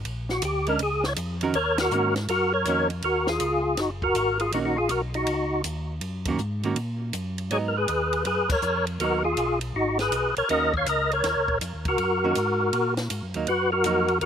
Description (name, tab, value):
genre	soul jazz organ trio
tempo	161 BPM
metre	4/4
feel	swing 66% on 8ths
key	Eb minor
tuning	A4 = 440 Hz
part	mellow tonewheel organ	bass	0.0-14.3 s	Gb1 to Bb2	-30 LUFS	equal	chorus vibrato, slow rotary speaker
part	compact cocktail drum kit	drums	0.0-14.3 s	crash cymbal, hi-hat, kick drum, ride cymbal, snare drum	-34 LUFS	equal	none
part	percussive tonewheel organ	melody	0.3-14.3 s	Eb4 to F5	-23 LUFS	left 1 dB	slow rotary speaker, overdrive, chorus vibrato, slapback echo
part	archtop guitar, miked and amplified	accompaniment	0.7-14.1 s	Eb3 to Bb4	-29 LUFS	right 5 dB	slapback echo
room	little or no reverb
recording	recorded outdoors, with no room sound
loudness	-22 LUFS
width	side -8 dB against mid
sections	0.0-1.5 A section; 1.5-14.3 B section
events	tonewheel organ solo 0.0-1.5; band accent 1.7, 8.4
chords	0.1 Bb7#9; 1.5 Ebm7; 7.5 Abm7; 10.5 Ebm7; 13.5 Bmaj7